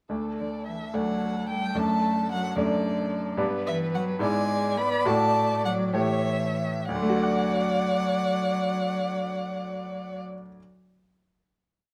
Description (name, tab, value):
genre	quick classical-period movement for piano quartet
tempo	63-75 BPM (dotted quarters)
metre	6/8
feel	rubato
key	D major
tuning	A4 = 440 Hz
part	warm violin	second line	0.1-10.2 s	A4 to D5	-34 LUFS	equal	none
part	bright grand piano	accompaniment	0.1-10.6 s	D2 to F#5	-31 LUFS	equal	none
part	dark violin	melody	0.4-10.2 s	D5 to B5	-32 LUFS	equal	none
part	warm cello	second line	0.4-10.2 s	D3 to B3	-33 LUFS	equal	none
room	moderate studio reverb, RT60 0.9 s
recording	none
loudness	-26 LUFS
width	mono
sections	0.1-6.9 A section; 6.9-10.6 final chord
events	slowing down 2.6-6.9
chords	0.1 D; 1.8 D/F#; 3.4 G; 4.2 E7/G#; 5.1 D/A; 6.0 A7; 6.9 D